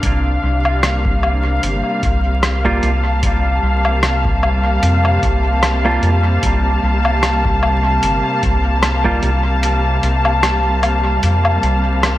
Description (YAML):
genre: ambient dub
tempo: 75 BPM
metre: 4/4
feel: swing 55% on 16ths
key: unclear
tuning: A4 = 440 Hz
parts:
  - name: muted studio string section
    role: sustained chords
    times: 0.0-12.2 s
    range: C3 to A5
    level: -18 LUFS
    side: left 1 dB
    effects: vintage 12-bit sampler grit
  - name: round analog bass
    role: bass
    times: 0.0-12.2 s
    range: G1 to F2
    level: -17 LUFS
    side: equal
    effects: none
  - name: electronic kick drum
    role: drums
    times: 0.0-9.2 s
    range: none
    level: -22 LUFS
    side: equal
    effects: studio reverb
  - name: lo-fi sampler-style drum kit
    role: drums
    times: 0.0-12.2 s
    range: hi-hat, rim click, woodblock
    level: -21 LUFS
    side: left 1 dB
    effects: overdrive, studio reverb, dub echo
  - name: semi-hollow electric guitar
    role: stabs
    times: 2.6-9.3 s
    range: G3 to F4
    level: -24 LUFS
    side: right 2 dB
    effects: spring reverb, dub echo
room: light reverb, digital ambience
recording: vinyl crackle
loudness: -13 LUFS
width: side -15 dB against mid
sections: 0.0-12.2 A section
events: filter sweep on clean electric guitar 0.0-12.2; kick drops out 9.6-12.2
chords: 0.0 Gm7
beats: | 0.03 0.83 1.63 2.43 | 3.23 4.03 4.83 5.63 | 6.43 7.23 8.03 8.83 | 9.63 10.43 11.23 12.03